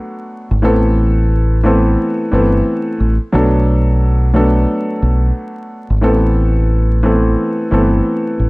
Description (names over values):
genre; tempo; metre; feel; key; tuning
hip hop; 89 BPM; 4/4; swing 61% on 16ths; A dorian; A4 = 442 Hz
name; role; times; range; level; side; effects
dark grand piano; accompaniment; 0.0-8.5 s; E3 to A4; -15 LUFS; equal; cassette tape, high-pass filter, low-pass filter
deep dub fingered electric bass; bass; 0.5-8.5 s; G1 to B1; -13 LUFS; equal; none
room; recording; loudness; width
light reverb, small room ambience; vinyl crackle; -12 LUFS; side -24 dB against mid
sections
0.0-8.5 A section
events
none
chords
0.0 Bm7; 0.6 Amadd9; 3.3 Bm7; 6.0 Amadd9